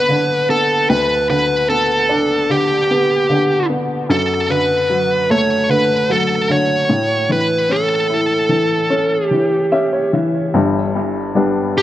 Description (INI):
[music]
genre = pop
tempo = 75 BPM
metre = 4/4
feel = straight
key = unclear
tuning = A4 = 441 Hz
[part]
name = smooth overdriven lead guitar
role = melody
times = 0.0-11.8 s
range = G4 to C#5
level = -16 LUFS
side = right 1 dB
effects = dub echo
[part]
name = warm upright piano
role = accompaniment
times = 0.0-11.8 s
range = G1 to E5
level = -17 LUFS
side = left 1 dB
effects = dub echo
[sound]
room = light reverb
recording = echo-heavy mix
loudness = -14 LUFS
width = side -13 dB against mid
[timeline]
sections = 0.0-10.6 A section; 10.6-11.8 B section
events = upright piano fill 9.3-10.6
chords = 0.0 G; 4.1 D/F#; 6.9 A; 10.6 G